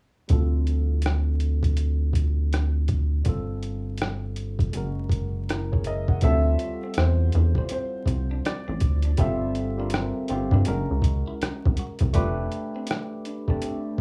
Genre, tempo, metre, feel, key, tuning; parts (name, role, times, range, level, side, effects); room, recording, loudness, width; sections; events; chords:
R&B, neo-soul; 81 BPM; 4/4; swing 62% on 16ths; A4 = 439 Hz
barky tine electric piano; accompaniment; 0.3-14.0 s; G3 to F#5; -34 LUFS; equal; overdrive, phaser
rubbery square bass; bass; 0.3-14.0 s; F1 to G2; -26 LUFS; equal
boom bap sampler-style drum kit; drums; 0.3-14.0 s; hi-hat, kick drum, rim click; -28 LUFS; equal
warm baby grand piano; melody; 5.9-11.7 s; C5 to E5; -35 LUFS; equal
semi-hollow electric guitar; second line; 6.2-13.8 s; C4 to G4; -41 LUFS; equal
little or no reverb; rough home demo mix, vinyl crackle, small room ambience; -25 LUFS; mono
0.3-6.2 A section; 6.2-14.0 B section
0.3 Dm7; 3.3 Gsus2; 4.7 F#add9; 6.2 Dm9; 9.2 Gm9; 10.7 F#9; 12.1 Fadd9